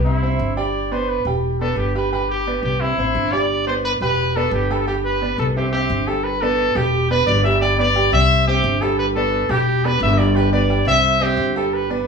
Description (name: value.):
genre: latin, salsa.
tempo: 175 BPM.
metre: 4/4.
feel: straight.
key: unclear.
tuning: A4 = 440 Hz.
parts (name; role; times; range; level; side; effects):
clear trumpet; melody; 0.0-11.9 s; E4 to E5; -20 LUFS; left 2 dB; none.
upright bass; bass; 0.0-12.1 s; E1 to C2; -21 LUFS; left 1 dB; none.
bright grand piano; accompaniment; 0.1-12.1 s; G3 to G5; -22 LUFS; right 5 dB; none.
room: moderate studio ambience, RT60 0.5 s.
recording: band playing live in one room, small room ambience.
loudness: -16 LUFS.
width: side -5 dB against mid.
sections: 0.0-6.2 A section; 6.2-12.1 B section.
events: none.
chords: 0.1 C; 0.7 Em7; 2.1 G; 2.8 C; 3.5 Em7; 4.9 G; 5.6 C; 6.2 Em7; 7.6 G; 8.3 C; 9.0 Em7; 10.4 G; 11.0 C.